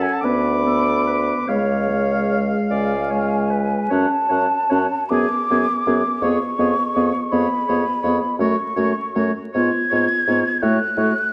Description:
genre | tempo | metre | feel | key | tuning
classical, slow romantic movement for wind quintet | 47-58 BPM (dotted quarters) | 6/8 | rubato | F# minor | A4 = 439 Hz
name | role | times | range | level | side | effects
mellow hollow concert flute | melody | 0.0-11.3 s | C#5 to G#6 | -25 LUFS | equal | none
warm oboe | second line | 0.0-11.1 s | C#5 to D6 | -30 LUFS | equal | none
dark French horn | accompaniment | 0.0-11.1 s | G#3 to C#4 | -25 LUFS | equal | none
mellow clarinet | accompaniment | 0.0-11.1 s | E#4 to D5 | -30 LUFS | equal | none
mellow bassoon | bass | 0.0-11.1 s | C#2 to A2 | -26 LUFS | equal | none
room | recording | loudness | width
wet recital hall reverb, RT60 1.4 s | dark, warm production, vinyl crackle | -19 LUFS | mono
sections
0.0-3.9 A section; 3.9-11.3 B section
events
none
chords
0.2 Bm/D; 1.5 C#; 3.9 F#m; 5.1 G#m7b5/F#; 6.2 C#7/E#; 8.4 F#m; 9.6 C#7/G#; 10.6 F#m/A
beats
0.24 | 1.49 2.71 | 3.91 5.12 | 6.23 7.32 | 8.40 9.55 | 10.63

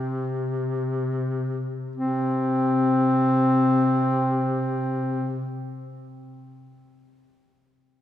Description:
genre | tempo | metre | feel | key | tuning
caucasian folk, Caucasian lament | free time | none | none | unclear | A4 = 440 Hz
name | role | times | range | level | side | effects
mellow duduk | melody | 0.0-5.5 s | C4 | -23 LUFS | left 1 dB | none
warm duduk | drone | 0.0-5.5 s | C3 | -27 LUFS | left 1 dB | none
room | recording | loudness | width
wet church reverb, RT60 3.3 s | minimal, uncompressed stereo recording | -21 LUFS | side -11 dB against mid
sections
0.0-2.0 A section; 2.0-6.9 B section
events
slowing down 0.0-2.0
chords
none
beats
free time

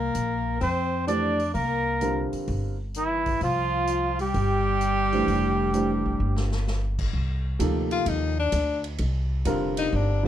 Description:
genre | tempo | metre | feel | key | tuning
modal jazz | 129 BPM | 4/4 | swing 68% on 8ths | F mixolydian from 7.1 s | A4 = 440 Hz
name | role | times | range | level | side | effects
warm trumpet | melody | 0.0-6.6 s | E4 to D5 | -26 LUFS | right 4 dB | none
bright tenor saxophone | second line | 0.0-10.3 s | E3 to F4 | -28 LUFS | left 6 dB | none
upright bass | bass | 0.0-10.3 s | F1 to F2 | -27 LUFS | equal | none
swinging big-band drum kit | drums | 0.1-9.8 s | crash cymbal, hi-hat, kick drum, ride cymbal, snare drum | -37 LUFS | equal | none
warm upright piano | accompaniment | 1.1-10.3 s | C3 to C5 | -27 LUFS | right 2 dB | none
room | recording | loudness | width
light reverb | dark, warm production | -23 LUFS | side -11 dB against mid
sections
0.0-7.1 A section; 7.1-10.3 B section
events
drum fill 6.2-6.7; tenor saxophone solo 7.1-10.3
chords
0.0 C9sus4; 7.1 F13sus4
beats
0.15 0.62 1.08 | 1.55 2.02 2.48 2.95 | 3.42 3.88 4.35 4.81 | 5.28 5.74 6.21 6.67 | 7.14 7.60 8.07 8.53 | 8.99 9.46 9.92

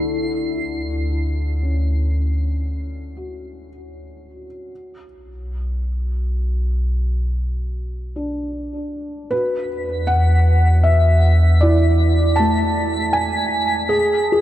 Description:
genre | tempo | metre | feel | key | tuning
ambient | 78 BPM | 3/4 | straight | D lydian | A4 = 440 Hz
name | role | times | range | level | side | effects
felt-muted upright piano | arpeggios | 0.0-14.4 s | A3 to G#4 | -25 LUFS | equal | diffuse ambient delay
deep rumbling drone | bass | 0.0-14.4 s | B1 to E2 | -18 LUFS | equal | built-in reverb
twinkling granular texture | texture | 0.0-0.1, 9.8-14.4 s | B6 to C7 | -29 LUFS | left 1 dB | built-in reverb
felt-muted upright piano | melody | 9.3-14.4 s | G#4 to A5 | -20 LUFS | equal | diffuse ambient delay
room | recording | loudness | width
moderate huge ambient reverb, RT60 7.7 s | dark, warm production | -17 LUFS | side -13 dB against mid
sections
0.1-14.4 A section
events
fade-in on felt piano 0.1-14.4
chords
0.1 D; 4.7 Bm; 9.3 E7sus4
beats
| 0.09 0.86 1.63 | 2.40 3.17 3.94 | 4.71 5.48 6.25 | 7.01 7.78 8.55 | 9.32 10.09 10.86 | 11.63 12.40 13.17 | 13.94

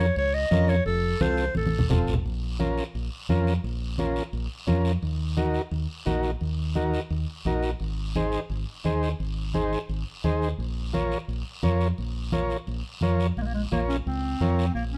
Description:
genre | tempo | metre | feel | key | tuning
latin, cumbia | 173 BPM | 4/4 | straight | Bb minor | A4 = 440 Hz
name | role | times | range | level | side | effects
clear clarinet | melody | 0.0-1.9, 13.4-15.0 s | Ab3 to Eb5 | -30 LUFS | equal | none
overdriven combo organ | accompaniment | 0.0-14.7 s | C4 to Db5 | -31 LUFS | equal | none
fingered electric bass | bass | 0.0-15.0 s | F1 to F2 | -30 LUFS | equal | none
congas | percussion | 0.2-14.9 s | none | -32 LUFS | equal | none
guiro | percussion | 0.2-15.0 s | none | -44 LUFS | equal | none
room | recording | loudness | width
light reverb | none | -27 LUFS | mono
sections
0.0-2.2 A section; 2.2-13.4 B section; 13.4-15.0 C section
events
drum fill 1.6-2.2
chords
0.0 Bbm; 0.9 F; 2.2 Bbm; 5.0 Ebm; 7.8 Ab; 10.6 Bbm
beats
0.17 0.51 | 0.86 1.21 1.55 1.90 | 2.25 2.59 2.94 3.29 | 3.64 3.98 4.33 4.68 | 5.03 5.37 5.72 6.07 | 6.42 6.76 7.11 7.46 | 7.81 8.15 8.50 8.85 | 9.20 9.54 9.89 10.24 | 10.59 10.94 11.29 11.63 | 11.98 12.33 12.68 13.02 | 13.37 13.72 14.07 14.41 | 14.76

